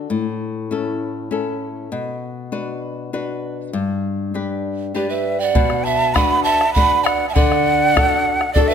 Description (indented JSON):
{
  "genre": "andean folk, Andean ensemble",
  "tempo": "99 BPM",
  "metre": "3/4",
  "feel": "straight",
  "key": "B minor",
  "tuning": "A4 = 440 Hz",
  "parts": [
    { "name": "flamenco guitar", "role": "accompaniment", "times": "0.0-8.7 s", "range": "G2 to B4", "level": "-22 LUFS", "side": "left 5 dB", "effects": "none" },
    { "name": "breathy mellow quena", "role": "melody", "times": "5.0-8.7 s", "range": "D5 to B5", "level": "-18 LUFS", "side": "right 2 dB", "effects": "none" },
    { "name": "breathy polished pan flute", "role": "second line", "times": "5.0-8.7 s", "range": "G4 to F#5", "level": "-21 LUFS", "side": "right 10 dB", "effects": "none" },
    { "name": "bombo", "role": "percussion", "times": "5.6-8.7 s", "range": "none", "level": "-20 LUFS", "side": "equal", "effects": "none" }
  ],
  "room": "moderate scoring stage reverb, RT60 1.6 s",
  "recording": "close, detailed microphones",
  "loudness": "-17 LUFS",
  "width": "side -7 dB against mid",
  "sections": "0.0-5.6 A section; 5.6-8.7 B section",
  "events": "none",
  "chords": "0.1 A; 1.9 Bm; 3.7 G; 5.6 Bm; 7.4 D"
}